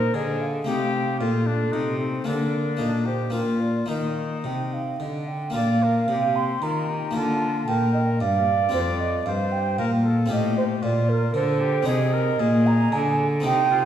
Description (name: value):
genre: classical, baroque-style sonata movement with continuo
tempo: 113 BPM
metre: 3/4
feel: rubato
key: Eb major, Bb major from 5.5 s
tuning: A4 = 438 Hz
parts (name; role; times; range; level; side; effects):
- warm trumpet; melody; 0.0-13.8 s; C4 to D5; -30 LUFS; left 5 dB; none
- mellow baroque flute; second line; 0.0-13.9 s; A4 to C6; -26 LUFS; right 5 dB; none
- harpsichord; accompaniment; 0.0-13.9 s; F2 to A4; -28 LUFS; left 2 dB; none
- rich cello; bass; 0.0-13.9 s; F2 to Eb3; -25 LUFS; equal; none
room: wet recital hall reverb, RT60 1.6 s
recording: heard from further back in the room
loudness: -21 LUFS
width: side -10 dB against mid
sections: 0.0-5.5 A section; 5.5-13.9 A section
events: none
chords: 0.0 Ab; 0.7 F7; 2.3 Bb/D; 2.8 Eb/Bb; 3.3 Bb; 3.9 Eb; 5.5 Bb; 8.7 F; 10.3 F/A; 11.9 Ab